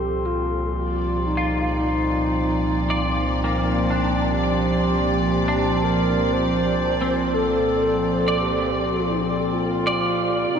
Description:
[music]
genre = ambient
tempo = 59 BPM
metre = 3/4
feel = straight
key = unclear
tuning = A4 = 440 Hz
[part]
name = mellow wooden-headed alto flute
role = melody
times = 0.0-10.6 s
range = Eb4 to C5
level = -24 LUFS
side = equal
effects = ping-pong delay
[part]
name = dark chamber string section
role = sustained chords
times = 0.0-10.6 s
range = Bb2 to D5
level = -23 LUFS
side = right 1 dB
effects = none
[part]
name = clean electric guitar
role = arpeggios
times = 0.0-10.6 s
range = Bb3 to D5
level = -27 LUFS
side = equal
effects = ensemble chorus, ping-pong delay
[part]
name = warm sub bass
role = bass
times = 0.0-10.6 s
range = C2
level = -29 LUFS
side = equal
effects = none
[part]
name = glass harmonica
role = texture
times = 0.0-10.6 s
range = F5 to C6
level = -33 LUFS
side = left 5 dB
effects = none
[sound]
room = wet huge ambient reverb, RT60 7.4 s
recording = dreamy mix soaked in reverb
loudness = -19 LUFS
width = side -7 dB against mid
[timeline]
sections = 0.0-10.5 A section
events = fade-out on sub bass 0.0-10.5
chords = 0.0 Bbadd9/C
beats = 0.24 | 1.26 2.28 3.30 | 4.32 5.33 6.36 | 7.38 8.42 9.47 | 10.52

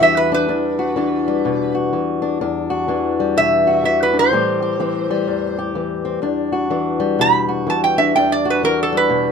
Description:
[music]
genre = acoustic country blues, solo or duo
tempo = 125 BPM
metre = 4/4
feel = swing 62% on 8ths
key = E minor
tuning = A4 = 440 Hz
[part]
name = metal-body resonator slide guitar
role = melody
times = 0.0-9.3 s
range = A4 to B5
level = -16 LUFS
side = right 2 dB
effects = none
[part]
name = fingerpicked old ladder-braced acoustic guitar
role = accompaniment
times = 0.0-9.3 s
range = E2 to G4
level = -18 LUFS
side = left 4 dB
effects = none
[sound]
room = light reverb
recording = minimal, uncompressed stereo recording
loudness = -16 LUFS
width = side -6 dB against mid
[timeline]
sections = 0.0-9.3 A section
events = resonator guitar played with a steel bar solo 0.0-9.3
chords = 0.0 Em9; 4.3 Am7; 6.2 Em9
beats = 0.01 | 0.49 0.97 1.45 1.93 | 2.41 2.89 3.37 3.85 | 4.32 4.80 5.28 5.76 | 6.24 6.71 7.19 7.67 | 8.15 8.63 9.11

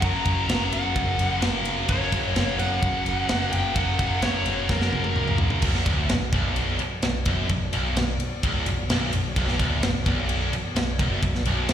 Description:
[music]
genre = heavy metal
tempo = 129 BPM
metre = 4/4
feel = straight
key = B harmonic minor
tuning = A4 = 438 Hz
[part]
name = high-gain lead guitar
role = melody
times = 0.0-5.4 s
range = A#4 to A#5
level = -28 LUFS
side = left 2 dB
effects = distortion, slapback echo, ping-pong delay
[part]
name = muted studio string section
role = sustained chords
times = 0.0-11.7 s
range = F#3 to D5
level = -37 LUFS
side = left 2 dB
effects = none
[part]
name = heavy high-gain guitar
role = riff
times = 0.0-11.7 s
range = B1 to F#3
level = -30 LUFS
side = right 15 dB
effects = distortion
[part]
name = high-gain distorted guitar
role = riff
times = 0.0-11.7 s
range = B1 to F#3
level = -29 LUFS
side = left 9 dB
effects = distortion, slapback echo
[part]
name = overdriven picked electric bass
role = bass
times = 0.0-11.7 s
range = B0 to F#2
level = -27 LUFS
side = equal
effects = none
[part]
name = tight metal drum kit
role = drums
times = 0.0-11.7 s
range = crash cymbal, kick drum, ride cymbal, snare drum, toms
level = -27 LUFS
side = equal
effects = none
[sound]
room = little or no reverb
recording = live gig heard through the venue's PA, recital hall reverb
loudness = -21 LUFS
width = side -10 dB against mid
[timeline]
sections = 0.0-5.6 A section; 5.6-11.7 B section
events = drum fill 4.7-5.6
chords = 0.0 F#; 5.6 Bm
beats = | 0.02 0.49 0.96 1.43 | 1.90 2.36 2.83 3.30 | 3.77 4.23 4.70 5.17 | 5.63 6.10 6.57 7.03 | 7.50 7.97 8.43 8.90 | 9.37 9.83 10.30 10.76 | 11.23 11.70

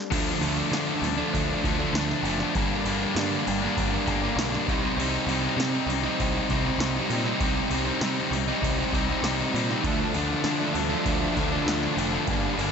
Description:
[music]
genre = quiet-loud alternative rock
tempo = 99 BPM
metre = 4/4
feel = straight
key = unclear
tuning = A4 = 440 Hz
[part]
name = cranked stack guitar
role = riff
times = 0.1-12.7 s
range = G2 to Eb4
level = -27 LUFS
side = left 13 dB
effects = overdrive
[part]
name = thick fuzz guitar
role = riff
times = 0.1-12.7 s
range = G2 to Eb4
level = -28 LUFS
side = right 11 dB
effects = distortion
[part]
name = growling picked electric bass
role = bass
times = 0.1-12.7 s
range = F1 to D3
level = -31 LUFS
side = equal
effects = overdrive
[part]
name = electro analog drum machine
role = drums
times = 0.1-12.7 s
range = crash cymbal, kick drum, snare drum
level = -32 LUFS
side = equal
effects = none
[part]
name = fuzz guitar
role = riff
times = 9.8-12.7 s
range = G2 to D4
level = -30 LUFS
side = equal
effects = distortion
[sound]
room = little or no reverb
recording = nothing above 7.9 kHz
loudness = -23 LUFS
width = side -6 dB against mid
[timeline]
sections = 0.1-12.7 A section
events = none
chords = 0.1 Dm; 2.6 Gm; 4.7 Cm; 9.8 Dm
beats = | 0.11 0.73 1.34 1.95 | 2.56 3.16 3.77 4.38 | 4.99 5.60 6.20 6.81 | 7.42 8.03 8.63 9.24 | 9.85 10.46 11.07 11.67 | 12.28

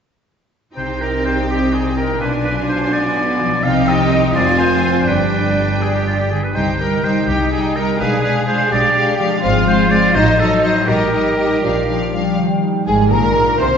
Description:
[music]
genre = classical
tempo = 83 BPM (dotted quarters)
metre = 6/8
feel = straight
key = C minor, Eb major from 9.4 s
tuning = A4 = 442 Hz
[part]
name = rich symphonic violin section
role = melody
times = 0.8-13.8 s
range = Ab4 to G#5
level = -26 LUFS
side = left 3 dB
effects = none
[part]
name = warm oboe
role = second line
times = 0.8-12.1 s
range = F4 to F5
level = -19 LUFS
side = right 1 dB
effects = none
[part]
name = warm symphonic violin section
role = second line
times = 0.8-13.8 s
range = C4 to C5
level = -24 LUFS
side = left 2 dB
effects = none
[part]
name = rich symphonic viola section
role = accompaniment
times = 0.8-13.8 s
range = F3 to C5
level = -22 LUFS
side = right 2 dB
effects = none
[part]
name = concert harp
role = arpeggios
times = 0.8-13.8 s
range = F2 to Eb5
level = -22 LUFS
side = left 5 dB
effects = none
[part]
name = rich studio cello section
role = bass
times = 0.8-13.7 s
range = Ab2 to G#4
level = -21 LUFS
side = right 2 dB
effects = none
[part]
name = rich studio double bass section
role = bass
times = 0.8-13.7 s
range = F1 to C2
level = -23 LUFS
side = right 2 dB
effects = none
[part]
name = mellow large flute ensemble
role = second line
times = 12.1-13.7 s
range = G5 to C6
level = -20 LUFS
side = equal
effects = none
[part]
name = dark French horn section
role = sustained chords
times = 12.1-13.7 s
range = G3 to C4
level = -20 LUFS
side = equal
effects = none
[sound]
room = wet scoring stage reverb, RT60 1.6 s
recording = heard from further back in the room, nothing above 7.8 kHz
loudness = -13 LUFS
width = side -7 dB against mid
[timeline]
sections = 0.8-12.4 A section; 12.4-13.8 B section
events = none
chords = 0.8 Cm; 2.2 Bdim7; 3.6 Cm; 4.4 Fm; 5.1 G; 6.6 Cm; 8.0 Bdim7; 9.4 Fm/Ab; 10.1 Adim7; 10.9 Eb/Bb; 11.6 Bb; 12.4 Eb; 13.1 Bb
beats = | 0.76 1.49 | 2.21 2.93 | 3.64 4.36 | 5.08 5.82 | 6.55 7.28 | 8.00 8.71 | 9.43 10.15 | 10.88 11.63 | 12.39 13.11

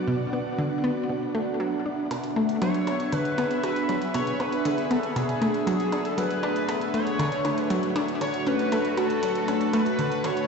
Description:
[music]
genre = ambient, sequencer-driven space music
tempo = 118 BPM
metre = 4/4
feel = straight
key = unclear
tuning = A4 = 442 Hz
[part]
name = sweeping resonant pad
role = sustained chords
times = 0.0-10.5 s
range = A3 to F#5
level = -28 LUFS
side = right 1 dB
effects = chorus
[part]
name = analog pluck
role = riff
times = 0.1-10.3 s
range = B2 to A4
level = -28 LUFS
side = left 1 dB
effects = chorus, ping-pong delay
[part]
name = electronic hi-hat and percussion blips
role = percussion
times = 2.1-10.5 s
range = none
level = -36 LUFS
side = right 2 dB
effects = ping-pong delay
[part]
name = pulse-width lead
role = melody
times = 2.6-10.5 s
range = G#4 to C#5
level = -28 LUFS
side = left 2 dB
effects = chorus, ping-pong delay
[sound]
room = wet shimmer reverb, RT60 7.6 s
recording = played on a big sound system in a bare room, large studio reverb, nothing above 8.0 kHz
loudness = -23 LUFS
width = side -5 dB against mid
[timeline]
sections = 0.0-10.5 A section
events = none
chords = 0.0 Bm; 6.2 D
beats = | 0.08 0.58 1.09 1.60 | 2.11 2.62 3.13 3.64 | 4.14 4.65 5.16 5.67 | 6.18 6.69 7.20 7.70 | 8.21 8.72 9.23 9.74 | 10.25

